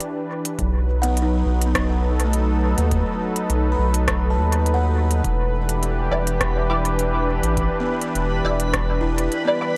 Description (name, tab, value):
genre	ambient dub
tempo	103 BPM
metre	4/4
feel	straight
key	E minor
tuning	A4 = 440 Hz
part	warm analog pad	sustained chords	0.0-9.8 s	E3 to B4	-27 LUFS	equal	chorus
part	organic electronic drum kit	drums	0.0-9.4 s	hi-hat, rim click	-29 LUFS	equal	overdrive, dub echo
part	round analog bass	bass	0.6-9.3 s	E1 to D#2	-23 LUFS	equal	none
part	electronic kick drum	drums	0.6-8.9 s	none	-32 LUFS	equal	overdrive
part	buzzing kalimba	arpeggios	1.0-9.8 s	A3 to B5	-31 LUFS	equal	tape echo
part	backwards swelling texture	texture	5.9-9.8 s	B4	-33 LUFS	equal	built-in reverb
part	filtered dub chord stab	stabs	6.1-9.7 s	G3 to D5	-29 LUFS	equal	phaser, ensemble chorus, dub echo
room	light reverb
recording	none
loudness	-21 LUFS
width	mono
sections	0.0-9.8 A section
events	none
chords	0.0 Em7; 0.6 B7; 5.2 Em7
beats	0.00 | 0.58 1.17 1.75 2.33 | 2.91 3.50 4.08 4.66 | 5.24 5.83 6.41 6.99 | 7.57 8.16 8.74 9.32